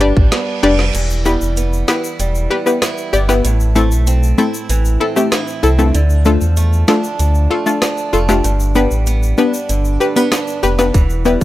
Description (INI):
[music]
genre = dancehall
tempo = 96 BPM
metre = 4/4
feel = straight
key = unclear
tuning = A4 = 437 Hz
[part]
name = analog pluck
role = accompaniment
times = 0.0-11.4 s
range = A3 to D5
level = -16 LUFS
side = left 2 dB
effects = chorus
[part]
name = picked swing-style acoustic guitar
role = arpeggios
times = 0.0-11.4 s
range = G2 to E4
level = -22 LUFS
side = right 5 dB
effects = none
[part]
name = sub bass with octave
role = bass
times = 0.0-11.4 s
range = E1 to E2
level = -14 LUFS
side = equal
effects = none
[part]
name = island pop drum kit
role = drums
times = 0.0-11.4 s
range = crash cymbal, hi-hat, kick drum, rim click, snare drum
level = -18 LUFS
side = equal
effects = none
[part]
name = reverse cymbal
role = sound effects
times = 0.1-0.9 s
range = none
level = -28 LUFS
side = right 7 dB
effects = none
[part]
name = egg shaker and timbales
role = percussion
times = 1.0-11.4 s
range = none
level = -28 LUFS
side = left 4 dB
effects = none
[sound]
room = little or no reverb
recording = none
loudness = -12 LUFS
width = side -15 dB against mid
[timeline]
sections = 0.9-11.4 A section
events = reverse cymbal 0.1-0.9; kick muted 0.9-10.9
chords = 0.0 G; 0.9 Em; 3.4 Am; 5.9 Dm; 8.4 G